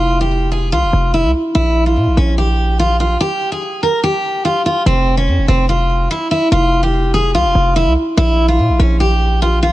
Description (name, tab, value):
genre	hip hop, trap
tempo	145 BPM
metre	4/4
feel	half-time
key	F harmonic minor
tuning	A4 = 439 Hz
part	picked steel-string acoustic guitar	melody	0.0-9.7 s	C4 to Bb4	-15 LUFS	equal	low-pass filter
part	hard-hitting 808-style bass	bass	0.0-9.7 s	F1 to Bb2	-14 LUFS	equal	none
room	small room ambience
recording	none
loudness	-12 LUFS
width	side -16 dB against mid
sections	0.0-4.9 A section; 4.9-9.7 B section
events	break 3.2-4.9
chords	0.0 F5; 1.6 Bb5; 4.9 F5; 8.2 Bb5